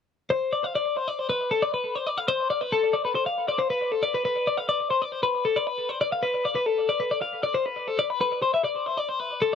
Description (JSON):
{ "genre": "rock", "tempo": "273 BPM (eighths)", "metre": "9/8", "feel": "straight", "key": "unclear", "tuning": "A4 = 442 Hz", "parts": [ { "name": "twelve-string electric guitar", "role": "solo", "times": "0.3-9.5 s", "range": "A4 to F5", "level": "-23 LUFS", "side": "left 3 dB", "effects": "tape echo" } ], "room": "moderate booth ambience, RT60 0.2 s", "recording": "dry, close 1970s-style studio recording", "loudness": "-23 LUFS", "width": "side -7 dB against mid", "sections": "0.3-9.6 A section", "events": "none", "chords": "none", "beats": "| 0.31 0.53 0.75 0.97 1.19 1.40 1.62 1.84 2.06 | 2.28 2.50 2.72 2.94 3.16 3.38 3.60 3.81 4.03 | 4.25 4.47 4.69 4.91 5.13 5.35 5.57 5.79 6.01 | 6.23 6.45 6.67 6.89 7.11 7.33 7.55 7.77 7.99 | 8.21 8.43 8.65 8.87 9.09 9.31 9.53" }